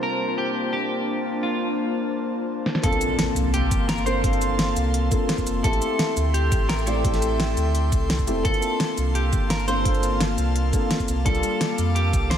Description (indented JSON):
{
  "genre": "liquid drum and bass",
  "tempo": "171 BPM",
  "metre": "4/4",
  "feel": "straight",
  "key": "G dorian",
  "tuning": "A4 = 440 Hz",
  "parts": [
    { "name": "clean electric guitar", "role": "melody", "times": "0.0-12.4 s", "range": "F4 to C5", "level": "-28 LUFS", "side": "right 1 dB", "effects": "wide subtle chorus, ping-pong delay" },
    { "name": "dark concert grand piano", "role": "accompaniment", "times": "0.0-12.4 s", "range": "C3 to A5", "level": "-27 LUFS", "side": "left 1 dB", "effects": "lush chorus, ping-pong delay" },
    { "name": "airy breathy pad", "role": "sustained chords", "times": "0.0-12.4 s", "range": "Bb3 to D6", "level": "-28 LUFS", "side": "left 1 dB", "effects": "chorus" },
    { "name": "pop drum kit", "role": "drums", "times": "2.7-12.4 s", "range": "cabasa, hi-hat, snare drum", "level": "-27 LUFS", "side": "equal", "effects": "low-pass filter on snare, low-pass filter on hats, low-pass filter on perc" },
    { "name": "sub bass with octave", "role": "bass", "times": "2.8-12.4 s", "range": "E1 to F2", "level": "-24 LUFS", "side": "equal", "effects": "none" },
    { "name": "electronic kick drum", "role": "drums", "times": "2.8-12.2 s", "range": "none", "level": "-24 LUFS", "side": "equal", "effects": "none" },
    { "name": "impact", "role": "sound effects", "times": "2.8-4.2 s", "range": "none", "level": "-32 LUFS", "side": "equal", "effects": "none" }
  ],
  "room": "moderate lush hall reverb, RT60 1.8 s",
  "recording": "dreamy mix soaked in reverb",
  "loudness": "-20 LUFS",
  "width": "side -9 dB against mid",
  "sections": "0.0-2.8 A section; 2.8-12.4 B section",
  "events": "filter sweep on grand piano 0.0-2.8; filter sweep on analog synth pad 0.0-2.8; drum fill 2.7; drop 2.8-12.4; impact 2.8-4.2",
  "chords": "0.0 C13sus4; 2.8 Gm11; 5.6 Am7; 8.4 Gm11; 11.1 C13sus4"
}